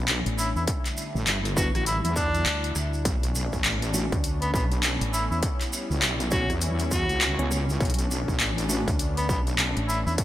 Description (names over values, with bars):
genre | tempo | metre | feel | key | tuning
glitch hop | 101 BPM | 4/4 | swing 61% on 16ths | B minor | A4 = 440 Hz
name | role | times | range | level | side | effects
warm analog pad | sustained chords | 0.0-10.2 s | D3 to E4 | -34 LUFS | left 1 dB | lush chorus, sidechain pumping
wobble bass | bass | 0.0-9.7 s | G1 to E2 | -28 LUFS | equal | chorus, tube saturation
dubstep drum kit | drums | 0.1-10.2 s | handclaps, hi-hat, rim click | -28 LUFS | left 1 dB | gated reverb
maracas | percussion | 0.1-10.2 s | none | -35 LUFS | right 2 dB | none
fingered electric bass | bass | 0.3-10.2 s | A1 to E2 | -28 LUFS | equal | none
bright tenor saxophone | melody | 0.4-10.1 s | B3 to F#4 | -30 LUFS | equal | vintage 12-bit sampler grit, ping-pong delay
electronic kick drum | drums | 0.7-10.2 s | none | -28 LUFS | equal | distortion
tine electric piano | stabs | 1.6-8.9 s | A3 to C#5 | -33 LUFS | left 1 dB | medium tremolo, sidechain pumping, ping-pong delay
room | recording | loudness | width
light reverb | bright 1980s-style digital production | -23 LUFS | side -13 dB against mid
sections
0.0-10.2 A section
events
none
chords
0.0 Bm9; 0.7 A7sus4; 3.1 Bm9; 5.4 C#m7b5; 7.8 Bm9